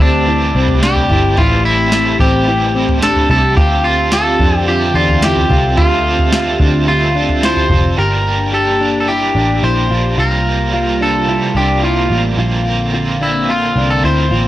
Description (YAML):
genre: dream pop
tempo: 109 BPM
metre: 4/4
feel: straight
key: unclear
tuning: A4 = 440 Hz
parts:
  - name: electric guitar at the edge of break-up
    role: melody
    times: 0.0-14.5 s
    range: D4 to C5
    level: -16 LUFS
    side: equal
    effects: analog delay
  - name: cranked stack guitar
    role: accompaniment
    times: 0.0-14.5 s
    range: A2 to Bb4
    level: -21 LUFS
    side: right 4 dB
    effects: overdrive, tremolo, analog chorus
  - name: hollow soft pad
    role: sustained chords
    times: 0.0-14.5 s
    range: C3 to E5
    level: -19 LUFS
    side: right 1 dB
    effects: chorus
  - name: mellow electric guitar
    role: arpeggios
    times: 0.0-14.5 s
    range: C4 to G4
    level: -20 LUFS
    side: left 3 dB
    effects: lush chorus, analog delay
  - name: vintage muted picked electric bass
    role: bass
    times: 0.0-14.5 s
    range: F1 to F2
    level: -17 LUFS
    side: equal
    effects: none
  - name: soft vintage rhythm box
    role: drums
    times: 0.0-7.8 s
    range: kick drum, snare drum, toms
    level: -16 LUFS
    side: equal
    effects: none
room: light reverb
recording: dry, gritty hardware recording, cassette tape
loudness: -11 LUFS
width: side -14 dB against mid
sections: 0.0-8.0 A section; 8.0-14.5 B section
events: none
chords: 0.0 Am7; 3.6 Dm11; 8.0 Gm; 10.2 C7sus4; 12.4 Bbadd9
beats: 0.27 0.82 | 1.37 1.92 2.47 3.02 | 3.57 4.12 4.67 5.22 | 5.78 6.33 6.88 7.43 | 7.98 8.53 9.08 9.63 | 10.18 10.73 11.28 11.83 | 12.38 12.93 13.48 14.03